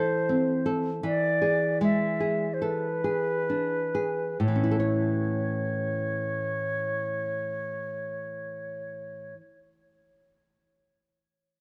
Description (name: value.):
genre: romantic duo for flute and classical guitar.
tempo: 32-42 BPM.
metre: 4/4.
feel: rubato.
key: unclear.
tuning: A4 = 439 Hz.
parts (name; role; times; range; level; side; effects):
concert flute; melody; 0.0-9.4 s; B4 to E5; -32 LUFS; equal; none.
nylon-string guitar; accompaniment; 0.0-9.7 s; A2 to C#5; -30 LUFS; equal; none.
room: light reverb.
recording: dark, warm production.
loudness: -28 LUFS.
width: mono.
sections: 0.0-4.4 A section; 4.4-11.3 B section.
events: slowing down 0.0-4.4.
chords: 0.0 Am/E; 1.0 E7; 4.4 A.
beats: 1.05 2.64 | 4.42 6.16 7.88 9.61.